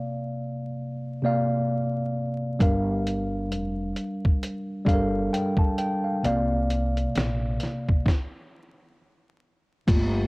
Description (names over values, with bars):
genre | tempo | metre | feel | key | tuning
lo-fi hip hop | 66 BPM | 4/4 | swing 56% on 16ths | unclear | A4 = 439 Hz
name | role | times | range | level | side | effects
mellow tine electric piano | accompaniment | 0.0-10.3 s | C3 to A5 | -26 LUFS | equal | medium stereo tremolo, cassette tape
upright bass | bass | 2.6-10.3 s | F1 to C2 | -28 LUFS | equal | none
dusty soul sampler-style drum kit | drums | 2.6-10.1 s | crash cymbal, hi-hat, kick drum, snare drum | -23 LUFS | equal | none
room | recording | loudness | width
little or no reverb | home recording on cassette, vinyl crackle | -23 LUFS | side -26 dB against mid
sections
0.0-9.9 A section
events
stop 8.1-9.9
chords
0.0 C9sus4; 2.6 Gm7; 6.2 C9sus4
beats
0.78 1.69 | 2.60 3.51 4.42 5.33 | 6.24 7.15 8.06 8.97 | 9.88